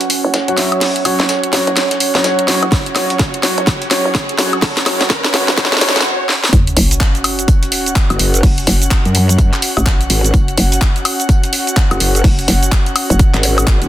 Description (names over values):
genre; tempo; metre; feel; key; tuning
bass house; 126 BPM; 4/4; swing 61% on 16ths; unclear; A4 = 441 Hz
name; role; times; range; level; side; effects
hollow knocking FM bass; bass; 0.0-13.3 s; F#1 to A1; -16 LUFS; equal; sidechain pumping, high-pass filter
dusty soul sampler-style drum kit; drums; 0.0-13.8 s; hi-hat, snare drum, tambourine; -25 LUFS; left 1 dB; none
house drum kit; drums; 0.0-13.9 s; handclaps, hi-hat, shaker, snare drum, woodblock; -16 LUFS; equal; none
riser and sub drop; sound effects; 1.0-8.4 s; none; -26 LUFS; equal; none
airy breathy pad; texture; 0.0-13.9 s; C#4 to F#5; -21 LUFS; right 2 dB; chorus, sidechain pumping
bright concert grand piano; stabs; 0.5-6.0 s; F#3 to F#5; -19 LUFS; left 2 dB; sidechain pumping, low-pass filter, tape echo
electronic kick drum; drums; 2.7-13.8 s; none; -13 LUFS; equal; none
growl bass; bass; 8.1-13.9 s; E1 to F#2; -13 LUFS; equal; chorus, overdrive, sidechain pumping
room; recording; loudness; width
light reverb; dense, heavily limited modern master, high-pass filter; -11 LUFS; side -13 dB against mid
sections
0.0-6.5 A section; 6.5-13.9 B section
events
build-up 0.0-6.5; drum fill 0.0-6.1, 6.3; filter sweep on grand piano 0.0-6.5; stop 6.1-6.5; drop 6.5-13.9; impact 6.5-8.4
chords
0.0 F#5